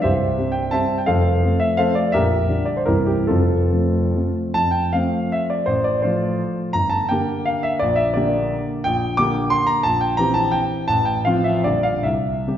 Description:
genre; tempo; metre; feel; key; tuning
classical, romantic triple-time dance for piano with dotted rhythms; 132-188 BPM; 3/4; rubato; F major; A4 = 440 Hz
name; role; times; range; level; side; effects
warm grand piano; solo; 0.0-12.6 s; Bb0 to D6; -17 LUFS; equal; none
room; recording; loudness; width
wet scoring stage reverb, RT60 1.6 s; recorded in a church or concert hall, nothing above 7.9 kHz; -17 LUFS; side -10 dB against mid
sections
0.0-4.6 A section; 4.6-12.6 B section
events
none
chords
0.0 C; 1.1 F; 2.1 Gm/Bb; 2.9 C7; 3.3 F; 5.7 F/A; 6.7 Gm; 7.8 Gm/Bb; 9.9 C7/Bb; 10.9 F/A; 11.7 Gm/Bb; 12.0 C

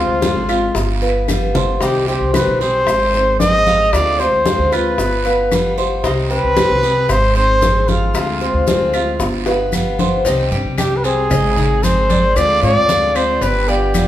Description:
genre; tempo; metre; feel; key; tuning
latin, Cuban son and guajira; 114 BPM; 4/4; straight; C harmonic minor; A4 = 440 Hz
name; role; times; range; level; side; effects
breathy trumpet; melody; 0.0-14.1 s; F4 to Eb5; -16 LUFS; equal; none
picked steel-string acoustic guitar; accompaniment; 0.0-14.1 s; C3 to Ab4; -23 LUFS; left 3 dB; none
Cuban tres; arpeggios; 0.0-14.1 s; C4 to F5; -21 LUFS; equal; none
upright bass; bass; 0.0-14.1 s; G1 to Ab2; -20 LUFS; equal; none
bongos and cowbell; percussion; 0.2-14.1 s; none; -24 LUFS; left 4 dB; none
congas; percussion; 0.2-14.1 s; none; -22 LUFS; equal; none
guiro; percussion; 0.2-14.1 s; none; -30 LUFS; right 6 dB; none
maracas; percussion; 0.2-14.1 s; none; -34 LUFS; left 4 dB; none
claves; percussion; 0.5-14.1 s; none; -32 LUFS; left 4 dB; none
room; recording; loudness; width
wet large studio reverb, RT60 1.0 s; band playing live in one room; -13 LUFS; side -12 dB against mid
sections
0.0-10.3 A section; 10.3-14.1 B section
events
drum fill 1.3-1.8, 9.5-10.3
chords
0.0 Dm7b5; 0.8 G7; 1.8 Cm; 2.9 Ab; 3.9 Dm7b5; 5.0 G7; 6.0 Cm; 7.1 Ab; 8.1 Dm7b5; 9.2 G7; 10.3 Cm; 11.3 Ab; 12.4 Dm7b5; 13.4 G7

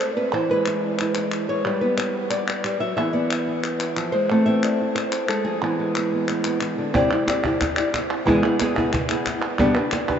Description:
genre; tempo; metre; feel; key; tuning
flamenco; 182 BPM; 4/4; straight; unclear; A4 = 440 Hz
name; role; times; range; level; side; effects
flamenco guitar; melody; 0.0-10.2 s; D3 to E5; -21 LUFS; equal; none
palmas hand claps; percussion; 0.3-10.2 s; none; -28 LUFS; left 1 dB; none
cajon; percussion; 6.9-10.2 s; none; -28 LUFS; right 1 dB; none
room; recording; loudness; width
wet huge ambient reverb, RT60 8.9 s; in a vast, echoing space, nothing above 7.9 kHz; -20 LUFS; side -8 dB against mid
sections
0.0-6.9 A section; 6.9-10.2 B section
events
none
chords
0.3 E; 1.7 G; 3.0 E; 4.3 Am; 5.6 E; 6.9 Cadd9; 8.3 E; 9.6 G

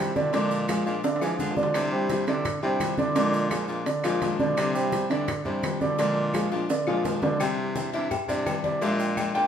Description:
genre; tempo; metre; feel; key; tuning
latin, Cuban son and guajira; 170 BPM; 4/4; straight; C major; A4 = 441 Hz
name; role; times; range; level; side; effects
picked steel-string acoustic guitar; accompaniment; 0.0-9.5 s; C3 to F4; -30 LUFS; left 2 dB; none
dark grand piano; arpeggios; 0.0-9.5 s; D3 to G5; -26 LUFS; right 2 dB; none
clear baritone saxophone; bass; 0.0-9.5 s; Bb2 to E3; -31 LUFS; left 1 dB; none
congas; percussion; 0.2-9.5 s; none; -37 LUFS; left 4 dB; none
maracas; percussion; 0.2-9.5 s; none; -44 LUFS; right 2 dB; none
bongos and cowbell; percussion; 0.3-9.5 s; none; -39 LUFS; left 6 dB; none
timbales and agogo bells; percussion; 0.3-9.5 s; none; -36 LUFS; right 1 dB; none
claves; percussion; 0.7-9.3 s; none; -44 LUFS; left 3 dB; none
room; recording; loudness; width
moderate large studio reverb, RT60 1.2 s; band playing live in one room; -23 LUFS; side -8 dB against mid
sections
0.0-7.4 A section; 7.4-9.5 B section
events
drum fill 1.0-1.7, 6.5-7.4; grand piano solo 7.4-9.5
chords
0.3 Bb7; 1.7 Cadd9; 3.2 Bb7; 4.6 Cadd9; 6.0 Bb7; 7.4 Cadd9; 8.8 Bb7

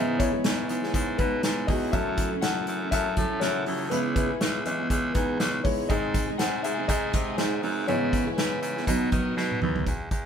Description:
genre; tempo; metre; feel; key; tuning
piano-driven pop; 121 BPM; 4/4; swing 56% on 16ths; unclear; A4 = 440 Hz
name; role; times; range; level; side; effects
warm grand piano; accompaniment; 0.0-9.9 s; E3 to F#5; -29 LUFS; left 4 dB; none
warm symphonic string section; sustained chords; 0.0-9.9 s; B2 to D#5; -38 LUFS; equal; none
fingerpicked steel-string acoustic guitar; riff; 0.0-9.9 s; G#2 to B4; -31 LUFS; right 5 dB; none
raspy baritone saxophone; bass; 0.0-10.3 s; C#2 to D#3; -31 LUFS; right 1 dB; none
unplugged drum kit; drums; 0.2-10.2 s; hi-hat, kick drum, snare drum, toms; -28 LUFS; equal; none
room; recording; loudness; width
moderate studio reverb, RT60 0.5 s; band playing live in one room; -24 LUFS; side -8 dB against mid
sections
0.0-9.9 A section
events
grand piano solo 0.0-9.9; drum fill 9.4-9.9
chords
0.0 C#m7/G#; 1.9 F#m7; 3.9 C#m7; 5.9 G#; 7.9 C#m7/G#; 8.9 B

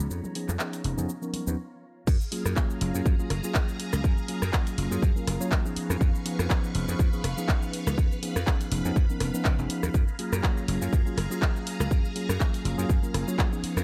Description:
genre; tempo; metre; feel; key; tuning
filtered disco house; 122 BPM; 4/4; swing 55% on 16ths; unclear; A4 = 440 Hz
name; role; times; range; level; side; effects
mellow tine electric piano; accompaniment; 0.0-13.8 s; F3 to Db5; -34 LUFS; equal; phaser, sidechain pumping, low-pass filter
phased string machine; sustained chords; 0.0-13.8 s; F4 to Db6; -42 LUFS; equal; ensemble chorus, phaser, sidechain pumping, low-pass filter
dry thumbed slap bass; bass; 0.0-13.8 s; F1 to Db3; -32 LUFS; equal; tube saturation, sidechain pumping, low-pass filter
punchy analog drum machine; drums; 0.0-13.8 s; crash cymbal, handclaps, hi-hat, rim click, shaker; -36 LUFS; equal; sidechain pumping on perc, sidechain pumping on hats, sidechain pumping on cymbals
maracas and congas; percussion; 0.1-1.6 s; none; -42 LUFS; equal; none
electronic kick drum; drums; 2.1-13.5 s; none; -27 LUFS; equal; none
room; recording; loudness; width
digital ambience; none; -27 LUFS; mono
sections
0.0-2.1 A section; 2.1-13.8 B section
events
filter sweep 0.0-2.1; stop 1.6-2.1; drop 2.1-13.8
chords
0.0 Db7/F; 2.1 Gbmaj9; 5.8 Db7/F; 9.9 Gbmaj9

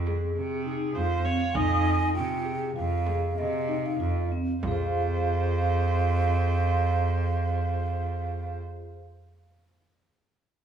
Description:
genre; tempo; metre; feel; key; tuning
contemporary instrumental, chamber music in an uneven meter; 95-101 BPM; 5/4; straight; F minor; A4 = 439 Hz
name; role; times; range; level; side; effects
rich cello; bass; 0.0-8.5 s; F2 to C3; -27 LUFS; right 2 dB; none
vibraphone with soft mallets; arpeggios; 0.1-9.0 s; C4 to F5; -32 LUFS; left 2 dB; none
frame drum; percussion; 0.1-4.9 s; none; -37 LUFS; right 2 dB; none
warm viola; second line; 0.6-8.6 s; Ab4 to Eb5; -35 LUFS; equal; none
breathy mellow concert flute; melody; 0.9-8.5 s; Eb5 to Ab5; -31 LUFS; right 3 dB; none
room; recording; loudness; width
moderate recital hall reverb, RT60 1.7 s; small room ambience; -24 LUFS; side -8 dB against mid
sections
0.0-4.6 A section; 4.6-7.8 B section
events
slowing down 0.0-4.6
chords
0.0 Fm7; 4.6 Fm

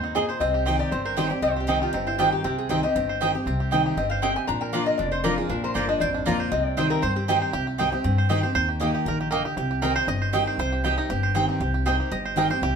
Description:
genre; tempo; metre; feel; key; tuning
bluegrass; 236 BPM; 4/4; straight; C minor; A4 = 440 Hz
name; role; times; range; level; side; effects
bluegrass banjo; melody; 0.0-12.7 s; C4 to Eb5; -29 LUFS; right 5 dB; none
lap resonator guitar; melody; 0.0-7.2 s; Eb4 to Bb5; -27 LUFS; left 4 dB; none
picked steel-string acoustic guitar; accompaniment; 0.0-12.8 s; F2 to G4; -27 LUFS; left 2 dB; none
upright bass; bass; 0.0-12.8 s; F1 to G2; -29 LUFS; left 1 dB; none
mandolin; stabs; 0.1-12.5 s; Bb3 to Bb5; -26 LUFS; right 4 dB; none
room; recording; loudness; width
wet studio reverb, RT60 0.8 s; band playing live in one room; -22 LUFS; side -6 dB against mid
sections
0.0-7.5 A section; 7.5-12.8 B section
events
five-string banjo solo 7.5-12.8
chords
0.4 Cm; 4.5 Bb; 6.5 Cm; 8.6 Eb; 9.6 Cm

